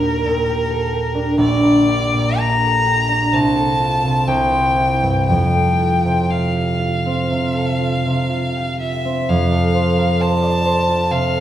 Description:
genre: classical, romantic duo for violin and harp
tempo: 58-68 BPM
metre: 4/4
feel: rubato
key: F major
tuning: A4 = 440 Hz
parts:
  - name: clear violin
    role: melody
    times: 0.0-11.4 s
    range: Bb4 to Bb5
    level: -19 LUFS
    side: left 1 dB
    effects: none
  - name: concert harp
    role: accompaniment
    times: 0.0-11.4 s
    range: Bb1 to D5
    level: -17 LUFS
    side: right 1 dB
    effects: none
room: wet recital hall reverb, RT60 1.6 s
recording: heard from further back in the room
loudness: -15 LUFS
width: side -11 dB against mid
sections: 0.0-9.3 A section; 9.3-11.4 B section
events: none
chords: 0.0 Ebmaj7; 1.4 Gm/Bb; 3.3 F/C; 4.3 C; 5.3 F

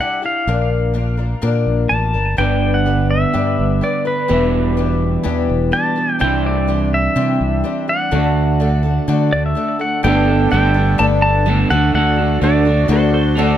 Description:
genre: rock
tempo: 126 BPM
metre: 4/4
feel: straight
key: G major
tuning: A4 = 441 Hz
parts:
  - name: pedal steel guitar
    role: melody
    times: 0.0-12.9 s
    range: B4 to A5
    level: -20 LUFS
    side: equal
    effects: tape echo
  - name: picked twelve-string acoustic guitar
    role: accompaniment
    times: 0.0-13.6 s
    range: G2 to B4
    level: -21 LUFS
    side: left 7 dB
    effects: none
  - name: fingered electric bass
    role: bass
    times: 0.5-13.5 s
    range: E1 to D3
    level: -17 LUFS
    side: equal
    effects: none
  - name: electric guitar through a small old amp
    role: riff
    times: 2.4-13.6 s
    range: E2 to A4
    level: -20 LUFS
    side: right 4 dB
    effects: lush chorus
  - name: accordion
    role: sustained chords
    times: 10.0-13.6 s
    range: A3 to A4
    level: -28 LUFS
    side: right 3 dB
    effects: none
  - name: clean lap steel guitar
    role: second line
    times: 12.9-13.6 s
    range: A4 to C5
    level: -22 LUFS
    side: right 1 dB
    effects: none
room: light reverb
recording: none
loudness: -14 LUFS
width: side -11 dB against mid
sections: 0.0-10.0 A section; 10.0-13.6 B section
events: none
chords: 0.5 Bb; 2.4 G; 4.3 Em7; 6.2 Cadd9; 8.1 D; 10.0 Gadd9; 11.7 D

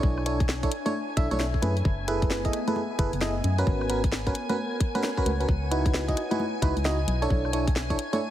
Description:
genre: UK garage, two-step garage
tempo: 132 BPM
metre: 4/4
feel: swing 63% on 16ths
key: unclear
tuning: A4 = 441 Hz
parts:
  - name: soft string machine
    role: sustained chords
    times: 0.0-8.3 s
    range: G#5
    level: -39 LUFS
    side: left 1 dB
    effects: phaser, ensemble chorus, sidechain pumping
  - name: FM electric piano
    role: stabs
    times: 0.0-8.2 s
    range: C#4 to E5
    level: -29 LUFS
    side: right 1 dB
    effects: chorus, ping-pong delay
  - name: organ-like FM bass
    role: bass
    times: 0.0-8.0 s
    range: F#1 to F#2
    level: -28 LUFS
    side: equal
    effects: none
  - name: electronic kick drum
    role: drums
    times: 0.0-8.0 s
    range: none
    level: -26 LUFS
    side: equal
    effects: none
  - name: warbly tape-like pad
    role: texture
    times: 0.6-8.3 s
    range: A3 to G#5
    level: -36 LUFS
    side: left 1 dB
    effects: chorus, built-in reverb, sidechain pumping
  - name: garage drum kit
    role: drums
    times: 0.2-8.2 s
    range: congas, hi-hat, rim click, snare drum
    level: -32 LUFS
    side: equal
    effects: none
room: light reverb, digital ambience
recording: heavily compressed radio sound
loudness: -24 LUFS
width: side -12 dB against mid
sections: 0.0-8.3 A section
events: none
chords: 0.0 Bm11; 1.6 F#m11; 3.7 G#m11; 5.5 C#m11; 7.1 Bm11

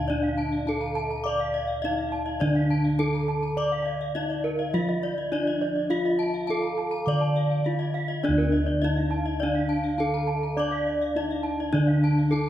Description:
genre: Balinese gamelan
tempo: 103 BPM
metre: 4/4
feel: straight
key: D pelog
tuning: A4 = 441 Hz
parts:
  - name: gamelan-type bronze metallophone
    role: melody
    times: 0.0-12.5 s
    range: D4 to D5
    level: -28 LUFS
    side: equal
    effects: none
  - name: mellow xiao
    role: second line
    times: 0.0-12.2 s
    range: D5 to A5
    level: -35 LUFS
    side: right 1 dB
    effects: none
  - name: gamelan-type bronze metallophone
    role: arpeggios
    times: 0.0-12.5 s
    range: D5 to D6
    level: -33 LUFS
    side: left 4 dB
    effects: none
  - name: gamelan-type bossed gongs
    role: bass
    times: 0.0-12.5 s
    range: D2 to D5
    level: -27 LUFS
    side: equal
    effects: none
  - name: gamelan-type bronze metallophone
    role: arpeggios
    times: 0.2-12.0 s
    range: Bb4 to A5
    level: -35 LUFS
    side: right 3 dB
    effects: none
  - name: gamelan-type bronze metallophone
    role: accompaniment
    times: 8.2-12.5 s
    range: D3 to D4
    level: -31 LUFS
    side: right 1 dB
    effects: none
room: wet recital hall reverb, RT60 1.7 s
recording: heard from further back in the room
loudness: -23 LUFS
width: side -12 dB against mid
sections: 0.0-12.5 A section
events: none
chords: none

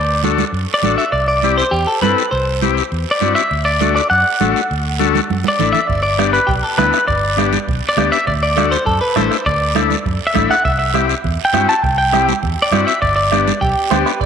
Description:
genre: latin, cumbia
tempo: 202 BPM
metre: 4/4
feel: straight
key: G major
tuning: A4 = 440 Hz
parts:
  - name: clean electric guitar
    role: melody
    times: 0.0-14.3 s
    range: G4 to A5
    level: -16 LUFS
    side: equal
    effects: tape echo
  - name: fingered electric bass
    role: bass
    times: 0.0-14.3 s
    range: G1 to G2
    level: -21 LUFS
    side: equal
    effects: none
  - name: overdriven combo organ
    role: accompaniment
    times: 0.2-14.1 s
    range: A3 to A4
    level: -20 LUFS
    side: left 13 dB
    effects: none
  - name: congas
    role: percussion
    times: 0.2-14.1 s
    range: none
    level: -22 LUFS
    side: right 16 dB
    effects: none
  - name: guiro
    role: percussion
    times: 0.2-14.3 s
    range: none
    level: -28 LUFS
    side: right 15 dB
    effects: none
  - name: bombo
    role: percussion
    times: 5.9-14.3 s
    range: none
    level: -24 LUFS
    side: right 6 dB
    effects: none
  - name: electric guitar at the edge of break-up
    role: second line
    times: 13.9-14.3 s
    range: B4 to D5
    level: -20 LUFS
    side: right 12 dB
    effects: none
room: wet spring reverb, RT60 2.5 s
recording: 1960s-style stereo with parts hard left and right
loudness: -13 LUFS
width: side -7 dB against mid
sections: 0.0-14.3 A section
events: drum fill 5.2-5.9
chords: 0.0 D; 1.1 C; 3.5 D; 5.9 G; 8.3 D; 10.6 C; 13.0 G

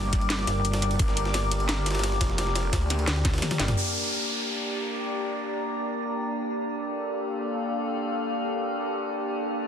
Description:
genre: dark technical drum and bass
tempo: 173 BPM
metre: 4/4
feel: straight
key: G minor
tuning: A4 = 440 Hz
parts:
  - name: metallic inharmonic drone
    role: sustained chords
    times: 0.0-9.7 s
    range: Bb3 to D5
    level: -31 LUFS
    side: left 1 dB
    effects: chorus, built-in reverb, sidechain pumping
  - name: pulsing pluck wobble bass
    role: bass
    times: 0.0-1.0, 3.1-3.8 s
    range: G1 to D2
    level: -26 LUFS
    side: equal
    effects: chorus
  - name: warbly tape-like pad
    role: texture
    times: 0.0-9.7 s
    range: G4 to D6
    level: -32 LUFS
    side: left 1 dB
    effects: chorus, built-in reverb, phaser, sidechain pumping
  - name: drum and bass drum kit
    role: drums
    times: 0.1-3.8 s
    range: hi-hat, snare drum, toms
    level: -28 LUFS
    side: left 1 dB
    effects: none
  - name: electronic kick drum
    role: drums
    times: 0.1-3.3 s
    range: none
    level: -26 LUFS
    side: equal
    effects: none
  - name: jungle sampler-style drum kit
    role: drums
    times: 0.1-3.8 s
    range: ride cymbal, snare drum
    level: -34 LUFS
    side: right 1 dB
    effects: high-pass filter on cymbals, high-pass filter on snare
  - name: snarling distorted saw bass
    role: bass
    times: 1.0-3.1 s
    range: F1 to D2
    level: -28 LUFS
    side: equal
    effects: distortion, overdrive
  - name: downlifter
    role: sound effects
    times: 3.8-6.5 s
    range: none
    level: -31 LUFS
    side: equal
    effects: none
room: light reverb, digital ambience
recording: dense, heavily limited modern master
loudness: -25 LUFS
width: side -8 dB against mid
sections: 0.0-3.8 A section; 3.8-9.7 B section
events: drum fill 3.4-3.8; band accent 3.6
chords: 0.0 Gm

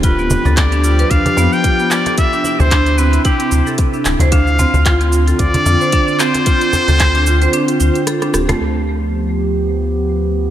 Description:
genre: organic downtempo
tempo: 112 BPM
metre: 4/4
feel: swing 57% on 16ths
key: unclear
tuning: A4 = 439 Hz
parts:
  - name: trumpet with straight mute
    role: melody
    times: 0.0-8.1 s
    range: G4 to G5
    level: -18 LUFS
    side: left 1 dB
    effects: analog delay
  - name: warbly tape-like pad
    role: sustained chords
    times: 0.0-10.5 s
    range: C3 to G4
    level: -21 LUFS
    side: right 1 dB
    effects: chorus, built-in reverb, sidechain pumping
  - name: marimba with hard mallets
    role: arpeggios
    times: 0.0-8.6 s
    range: A3 to C5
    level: -19 LUFS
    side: right 1 dB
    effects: tape echo
  - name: round analog bass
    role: bass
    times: 0.0-10.5 s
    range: D1 to F2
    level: -15 LUFS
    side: equal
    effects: sidechain pumping
  - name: electronic kick drum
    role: drums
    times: 0.0-7.1 s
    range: none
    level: -15 LUFS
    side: equal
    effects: none
  - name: organic electronic drum kit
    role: drums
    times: 0.0-8.6 s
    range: handclaps, hi-hat, rim click, shaker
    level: -22 LUFS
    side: right 1 dB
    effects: none
  - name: cajon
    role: percussion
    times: 0.3-8.6 s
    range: none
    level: -22 LUFS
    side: right 1 dB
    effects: none
room: moderate lush hall reverb, RT60 2.5 s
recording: dreamy mix soaked in reverb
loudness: -12 LUFS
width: side -11 dB against mid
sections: 0.0-8.6 A section; 8.6-10.5 B section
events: break 7.5-8.6; drum fill 8.1-8.6; filter sweep on ambient pad 8.6-10.5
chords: 0.0 G7/D; 2.2 C/D; 4.3 Dm7; 8.6 G7/D

